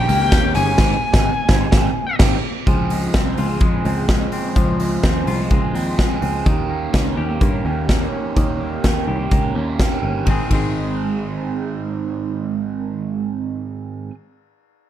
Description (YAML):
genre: jangly indie pop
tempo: 126 BPM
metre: 4/4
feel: straight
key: Ab major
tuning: A4 = 439 Hz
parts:
  - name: biting lead guitar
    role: melody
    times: 0.0-2.2 s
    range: G5 to Ab5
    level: -21 LUFS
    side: left 2 dB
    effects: overdrive, slapback echo
  - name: warm studio violin section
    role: second line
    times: 0.0-0.8 s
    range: G4 to Ab4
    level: -30 LUFS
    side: right 3 dB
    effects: none
  - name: overdriven electric guitar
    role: accompaniment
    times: 0.0-14.1 s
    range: Ab2 to Ab4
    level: -24 LUFS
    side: right 8 dB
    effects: phaser
  - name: clean electric guitar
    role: arpeggios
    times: 0.0-14.1 s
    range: Eb3 to Ab4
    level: -26 LUFS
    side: left 6 dB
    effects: none
  - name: picked electric bass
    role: bass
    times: 0.0-14.1 s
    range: G1 to G2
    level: -23 LUFS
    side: equal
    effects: none
  - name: big rock drum kit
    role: drums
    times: 0.1-10.6 s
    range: crash cymbal, hi-hat, kick drum, ride cymbal, snare drum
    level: -18 LUFS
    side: equal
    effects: none
  - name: tambourine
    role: percussion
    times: 0.1-0.7 s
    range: none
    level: -37 LUFS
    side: right 16 dB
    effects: none
room: light reverb, small room ambience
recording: dark, warm production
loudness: -16 LUFS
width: side -11 dB against mid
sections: 0.0-2.7 A section; 2.7-10.3 B section; 10.3-14.1 C section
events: band accent 0.8-2.7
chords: 0.0 Eb7; 0.8 Abmaj7; 2.7 Dbmaj7; 6.5 Eb7; 10.3 Ab